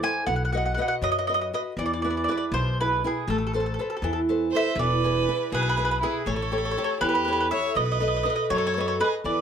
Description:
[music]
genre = italian folk, Italian serenade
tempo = 80 BPM (dotted quarters)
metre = 6/8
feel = straight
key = unclear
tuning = A4 = 440 Hz
[part]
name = mandolin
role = melody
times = 0.0-9.4 s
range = G#4 to G#5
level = -26 LUFS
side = right 2 dB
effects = none
[part]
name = flamenco guitar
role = accompaniment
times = 0.0-9.4 s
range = B2 to D#5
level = -28 LUFS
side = left 1 dB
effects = none
[part]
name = upright bass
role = bass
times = 0.3-9.4 s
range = E1 to F#2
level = -30 LUFS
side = equal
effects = none
[part]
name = rich violin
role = second line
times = 4.5-9.4 s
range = E4 to C#5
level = -29 LUFS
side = right 4 dB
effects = none
[sound]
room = moderate small room ambience, RT60 0.5 s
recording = none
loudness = -22 LUFS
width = side -8 dB against mid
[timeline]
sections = 0.0-9.4 A section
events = none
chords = 0.3 B; 1.8 E; 3.3 Amadd9; 4.8 E; 6.3 A7; 7.8 B7

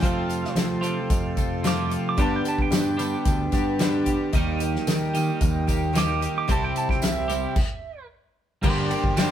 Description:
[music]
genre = folk rock and heartland rock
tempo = 112 BPM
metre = 4/4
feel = straight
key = unclear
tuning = A4 = 442 Hz
[part]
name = pedal steel guitar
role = second line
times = 0.0-9.3 s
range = G4 to D6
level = -30 LUFS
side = right 6 dB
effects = none
[part]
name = picked twelve-string acoustic guitar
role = accompaniment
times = 0.0-9.3 s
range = G2 to A4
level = -30 LUFS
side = left 2 dB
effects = none
[part]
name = accordion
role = sustained chords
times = 0.0-9.3 s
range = A4 to E6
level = -38 LUFS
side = right 2 dB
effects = light tremolo tuning
[part]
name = twelve-string electric guitar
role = riff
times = 0.0-9.3 s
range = F2 to G4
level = -27 LUFS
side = right 1 dB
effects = none
[part]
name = picked electric bass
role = bass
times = 0.0-9.2 s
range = G1 to F3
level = -28 LUFS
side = equal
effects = none
[part]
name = natural country drum kit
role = drums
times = 0.0-9.3 s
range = crash cymbal, hi-hat, kick drum, ride cymbal, snare drum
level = -25 LUFS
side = equal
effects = none
[part]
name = tambourine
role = percussion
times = 0.0-9.3 s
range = none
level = -41 LUFS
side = right 7 dB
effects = none
[sound]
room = light reverb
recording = band playing live in one room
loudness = -21 LUFS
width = side -10 dB against mid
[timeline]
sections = 0.0-8.6 A section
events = pedal steel guitar solo 0.0-8.6; stop 7.6-8.6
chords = 0.0 F; 2.2 G; 4.3 Eb; 6.5 C; 8.6 Gm

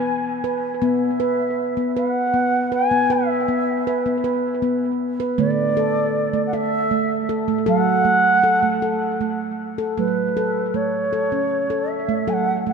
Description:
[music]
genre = world meditative, meditative tuned percussion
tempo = 52 BPM (dotted quarters)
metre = 6/8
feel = straight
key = F# minor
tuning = A4 = 440 Hz
[part]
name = mellow bansuri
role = melody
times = 0.0-12.7 s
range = B4 to G#5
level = -21 LUFS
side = right 1 dB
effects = dub echo
[part]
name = handpan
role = arpeggios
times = 0.0-12.7 s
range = D3 to B4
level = -21 LUFS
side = right 1 dB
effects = dub echo
[sound]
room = wet plate reverb, RT60 2.7 s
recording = echo-heavy mix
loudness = -18 LUFS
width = side -5 dB against mid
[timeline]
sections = 0.8-10.0 A section; 10.0-12.7 B section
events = none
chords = 0.0 E; 0.8 N.C.; 5.4 D5; 7.7 F#m

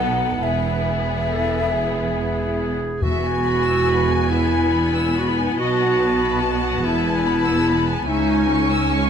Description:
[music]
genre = classical, slow romantic movement for symphony orchestra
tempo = 47 BPM (dotted quarters)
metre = 6/8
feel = rubato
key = E major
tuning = A4 = 440 Hz
[part]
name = warm symphonic violin section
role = melody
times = 0.0-9.1 s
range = G#4 to A5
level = -29 LUFS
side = left 4 dB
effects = none
[part]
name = mellow hollow concert flute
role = second line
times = 0.0-2.6 s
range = E5 to F#5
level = -24 LUFS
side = left 2 dB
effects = none
[part]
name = rich symphonic violin section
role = second line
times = 0.0-9.1 s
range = D#4 to E6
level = -28 LUFS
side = left 5 dB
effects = none
[part]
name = rich symphonic viola section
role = accompaniment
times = 0.0-9.1 s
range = B3 to C#4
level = -26 LUFS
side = equal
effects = none
[part]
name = clear symphonic double bass section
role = bass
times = 0.0-9.1 s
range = E1 to C#2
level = -26 LUFS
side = right 3 dB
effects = none
[part]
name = warm symphonic cello section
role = bass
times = 0.0-9.1 s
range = C#2 to B2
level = -26 LUFS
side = right 3 dB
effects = none
[part]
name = warm clarinet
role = second line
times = 1.3-9.0 s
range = D#4 to A4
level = -21 LUFS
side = equal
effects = none
[part]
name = timpani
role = percussion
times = 3.0-4.3 s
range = E2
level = -26 LUFS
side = left 2 dB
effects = none
[sound]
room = moderate concert hall reverb, RT60 1.7 s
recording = close, detailed microphones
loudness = -17 LUFS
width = side -8 dB against mid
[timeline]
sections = 0.0-3.0 A section; 3.0-9.1 B section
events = none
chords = 0.4 E; 5.6 B7(no3); 6.8 E; 8.1 C#m

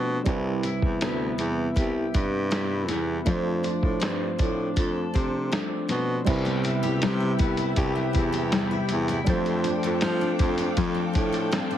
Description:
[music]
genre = indie pop, bedroom pop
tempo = 80 BPM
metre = 4/4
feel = straight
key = C major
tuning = A4 = 440 Hz
[part]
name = picked steel-string acoustic guitar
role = accompaniment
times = 0.0-11.8 s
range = C3 to A4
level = -28 LUFS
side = left 4 dB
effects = lush chorus, warbly pitch drift
[part]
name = tine electric piano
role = accompaniment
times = 0.0-11.8 s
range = G3 to C5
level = -31 LUFS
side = right 5 dB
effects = medium stereo tremolo
[part]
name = mellow baritone saxophone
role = bass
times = 0.0-11.5 s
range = C2 to F3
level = -28 LUFS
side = equal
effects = none
[part]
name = lo-fi sampler-style drum kit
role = drums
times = 0.3-11.7 s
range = crash cymbal, hi-hat, kick drum, snare drum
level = -28 LUFS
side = equal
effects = none
[part]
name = soft string machine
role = sustained chords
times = 6.3-11.8 s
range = G4 to D6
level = -33 LUFS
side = right 1 dB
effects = ensemble chorus
[sound]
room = light reverb, digital ambience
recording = heavily compressed radio sound, multiband compression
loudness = -23 LUFS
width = side -10 dB against mid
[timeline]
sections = 0.0-6.3 A section; 6.3-11.8 B section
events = none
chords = 0.3 Cmaj7; 3.3 F6; 6.3 Cmaj7; 9.3 F6

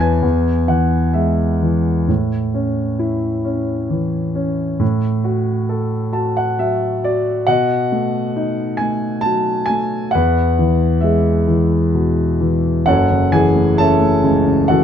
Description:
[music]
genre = classical, lyrical solo piano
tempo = 67 BPM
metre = 3/4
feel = rubato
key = unclear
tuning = A4 = 440 Hz
[part]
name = warm concert grand piano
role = solo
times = 0.0-14.8 s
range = F#1 to A5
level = -14 LUFS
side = equal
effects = none
[sound]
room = light reverb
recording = none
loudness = -15 LUFS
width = side -8 dB against mid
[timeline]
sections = 0.0-12.9 A section; 12.9-14.8 B section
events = grand piano fill 5.7-7.5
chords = 0.2 E; 2.1 A; 4.8 Dadd9/A; 7.5 B7; 10.1 E; 12.9 F#m7

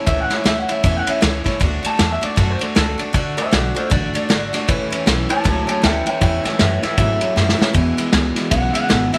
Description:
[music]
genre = rockabilly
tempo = 156 BPM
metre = 4/4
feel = swing 61% on 8ths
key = A major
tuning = A4 = 440 Hz
[part]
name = picked steel-string acoustic guitar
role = accompaniment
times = 0.0-9.2 s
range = E2 to F#4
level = -26 LUFS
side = equal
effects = none
[part]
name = electric guitar through a small old amp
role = melody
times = 0.1-9.2 s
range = F#4 to A5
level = -25 LUFS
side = equal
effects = tape echo
[part]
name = upright bass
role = bass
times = 0.1-9.2 s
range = G#1 to G#2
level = -24 LUFS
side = equal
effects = none
[part]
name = vintage drum kit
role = drums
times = 0.1-9.2 s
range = kick drum, ride cymbal, snare drum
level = -21 LUFS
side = equal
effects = none
[part]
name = electric guitar through a small old amp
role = riff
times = 4.7-9.2 s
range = E2 to F#3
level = -26 LUFS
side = equal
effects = none
[sound]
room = light reverb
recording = none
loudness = -18 LUFS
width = mono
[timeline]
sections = 0.0-9.2 A section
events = clean electric guitar solo 0.0-9.2; drum fill 7.4-7.7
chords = 0.0 A; 1.6 D; 4.7 A; 7.7 E

